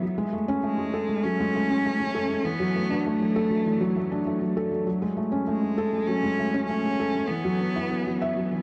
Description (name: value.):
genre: electronica.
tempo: 99 BPM.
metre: 4/4.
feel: straight.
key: unclear.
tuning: A4 = 439 Hz.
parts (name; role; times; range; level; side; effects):
felt-muted upright piano; riff; 0.0-8.6 s; E3 to E5; -27 LUFS; equal; none.
rich cello; melody; 0.6-8.5 s; G#3 to C#4; -32 LUFS; equal; none.
room: moderate huge ambient reverb, RT60 8.7 s.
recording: dark, warm production.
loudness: -26 LUFS.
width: mono.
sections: 0.0-8.6 A section.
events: none.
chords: 0.0 F#madd9; 2.5 Dadd9; 4.9 F#madd9; 7.3 Esus2.